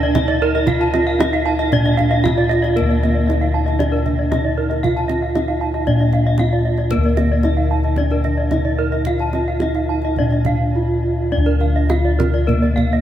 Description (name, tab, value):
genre	Balinese gamelan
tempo	103-115 BPM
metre	4/4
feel	straight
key	D pelog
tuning	A4 = 440 Hz
part	gamelan-type bronze metallophone	melody	0.0-13.0 s	Bb3 to F4	-21 LUFS	right 2 dB	none
part	gamelan-type bronze metallophone	arpeggios	0.0-12.9 s	Bb4 to A5	-24 LUFS	left 3 dB	none
part	gamelan-type bronze metallophone	arpeggios	0.0-13.0 s	Bb4 to A5	-25 LUFS	right 5 dB	none
part	gamelan-type bossed gongs	bass	0.0-13.0 s	D2 to Bb4	-18 LUFS	left 1 dB	none
part	kendang	percussion	0.1-12.9 s	none	-26 LUFS	right 3 dB	none
room	moderate huge ambient reverb, RT60 7.6 s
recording	heard from further back in the room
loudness	-15 LUFS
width	side -11 dB against mid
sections	0.0-11.3 A section; 11.3-13.0 B section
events	none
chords	none